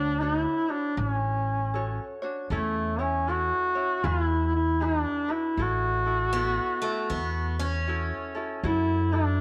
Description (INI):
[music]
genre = Hawaiian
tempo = 78 BPM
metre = 4/4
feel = swing 63% on 8ths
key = A major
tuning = A4 = 436 Hz
[part]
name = warm duduk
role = melody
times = 0.0-9.4 s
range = A3 to F#4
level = -29 LUFS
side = equal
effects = none
[part]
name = ukulele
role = accompaniment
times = 0.0-9.4 s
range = C#4 to C#5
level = -38 LUFS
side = equal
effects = none
[part]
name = upright bass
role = bass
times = 0.0-9.4 s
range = A1 to F#2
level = -31 LUFS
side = equal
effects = none
[part]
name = picked steel-string acoustic guitar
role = second line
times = 6.3-8.6 s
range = A3 to C#4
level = -36 LUFS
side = equal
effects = none
[sound]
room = moderate echo chamber reverb, RT60 1.7 s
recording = none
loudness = -27 LUFS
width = mono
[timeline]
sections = 0.0-8.6 A section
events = none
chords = 0.0 Dmaj7; 2.5 A/E; 4.0 Eadd9; 5.6 A6; 8.6 F#m7